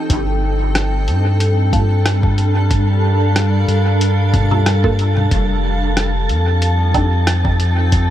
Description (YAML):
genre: ambient dub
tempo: 92 BPM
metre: 4/4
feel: swing 54% on 16ths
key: G minor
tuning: A4 = 440 Hz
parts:
  - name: granular cloud pad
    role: sustained chords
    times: 0.0-8.1 s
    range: F3 to G5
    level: -21 LUFS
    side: equal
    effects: built-in reverb
  - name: warm sub bass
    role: bass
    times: 0.1-8.1 s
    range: F1 to G2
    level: -15 LUFS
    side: equal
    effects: tube saturation
  - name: electronic kick drum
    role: drums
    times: 0.1-8.1 s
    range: none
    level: -18 LUFS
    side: equal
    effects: overdrive
  - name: lo-fi sampler-style drum kit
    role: drums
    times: 0.1-8.1 s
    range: congas, hi-hat, rim click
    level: -23 LUFS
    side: left 1 dB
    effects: overdrive, dub echo
  - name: wind-like tuned noise texture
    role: texture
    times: 1.2-8.1 s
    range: A5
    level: -26 LUFS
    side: right 3 dB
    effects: built-in reverb
  - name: filtered dub chord stab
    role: stabs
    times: 1.7-7.2 s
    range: Bb3 to A4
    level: -26 LUFS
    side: right 2 dB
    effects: phaser, analog chorus, cassette tape, dub echo
room: little or no reverb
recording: none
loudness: -13 LUFS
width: side -12 dB against mid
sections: 0.1-8.1 A section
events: none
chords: 0.1 Gm7; 5.3 F13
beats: | 0.10 0.75 1.40 2.06 | 2.71 3.36 4.01 4.66 | 5.32 5.97 6.62 7.27 | 7.92